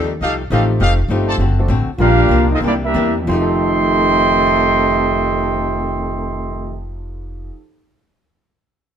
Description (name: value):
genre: jazz, big band swing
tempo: 175-205 BPM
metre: 4/4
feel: swing 63% on 8ths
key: F mixolydian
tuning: A4 = 441 Hz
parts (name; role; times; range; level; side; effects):
- archtop guitar, miked and amplified; accompaniment; 0.0-7.6 s; G2 to G4; -24 LUFS; left 5 dB; none
- upright bass; bass; 0.0-7.5 s; F1 to E2; -20 LUFS; equal; none
- clear trumpet section; stabs; 0.2-1.4 s; G4 to A5; -21 LUFS; equal; none
- clear concert grand piano; accompaniment; 0.5-7.6 s; F2 to Bb4; -24 LUFS; equal; none
- warm trumpet section; melody; 2.0-6.8 s; Bb3 to C6; -17 LUFS; right 3 dB; none
- warm trombone section; second line; 2.0-6.8 s; F2 to F4; -19 LUFS; right 1 dB; none
room: light reverb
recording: none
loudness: -13 LUFS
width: side -8 dB against mid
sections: 0.0-2.0 A section; 2.0-3.3 B section; 3.3-6.0 C section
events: slowing down 0.8-3.3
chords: 0.0 F9; 1.4 D7; 2.0 Gm7; 2.6 C9; 3.3 F9